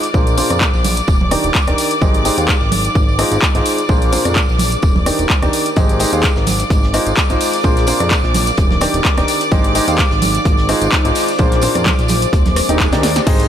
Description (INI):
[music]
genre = piano house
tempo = 128 BPM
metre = 4/4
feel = swing 54% on 16ths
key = unclear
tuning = A4 = 441 Hz
[part]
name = muted studio violin section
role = sustained chords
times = 0.0-13.5 s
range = C5 to D6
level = -21 LUFS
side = equal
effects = sidechain pumping
[part]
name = clear upright piano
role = riff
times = 0.0-13.5 s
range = Bb2 to F5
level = -19 LUFS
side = equal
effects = sidechain pumping, low-pass filter, dub echo
[part]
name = punchy analog drum machine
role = drums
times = 0.0-13.5 s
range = crash cymbal, handclaps, hi-hat, rim click, snare drum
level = -20 LUFS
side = left 1 dB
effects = overdrive
[part]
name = tambourine and congas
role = percussion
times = 0.0-13.2 s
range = none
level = -25 LUFS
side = right 4 dB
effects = none
[part]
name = deep dark ambient pad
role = texture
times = 0.0-13.5 s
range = Eb4 to G5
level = -26 LUFS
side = left 1 dB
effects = chorus, built-in reverb, sidechain pumping
[part]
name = fat analog bass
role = bass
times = 0.1-13.5 s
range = Eb1 to F2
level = -19 LUFS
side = equal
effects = sidechain pumping
[part]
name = electronic kick drum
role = drums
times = 0.1-13.4 s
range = none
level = -15 LUFS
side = equal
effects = overdrive
[part]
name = cloth-damped thuddy drum kit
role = drums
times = 5.8-13.4 s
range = hi-hat, snare drum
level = -32 LUFS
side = left 2 dB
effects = none
[part]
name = swell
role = sound effects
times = 12.5-13.3 s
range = none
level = -26 LUFS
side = right 5 dB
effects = none
[sound]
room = light reverb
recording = none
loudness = -12 LUFS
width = side -10 dB against mid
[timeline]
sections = 0.0-13.3 A section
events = fade-in on ambient pad 0.0-13.3; swell 12.5-13.3; drum fill 12.9-13.3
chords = 0.1 Bb9; 1.1 Ebmaj7; 2.0 Abmaj7; 3.0 Fm7/Ab; 3.9 Bb9; 4.8 Ebmaj7; 5.8 Abmaj7; 6.7 Fm7/Ab; 7.6 Bb9; 8.6 Ebmaj7; 9.5 Abmaj7; 10.5 Fm7/Ab; 11.4 Bb9; 12.3 Ebmaj7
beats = | 0.14 0.61 1.08 1.55 | 2.02 2.48 2.95 3.42 | 3.89 4.36 4.83 5.30 | 5.77 6.24 6.70 7.17 | 7.64 8.11 8.58 9.05 | 9.52 9.98 10.45 10.92 | 11.39 11.86 12.33 12.80 | 13.27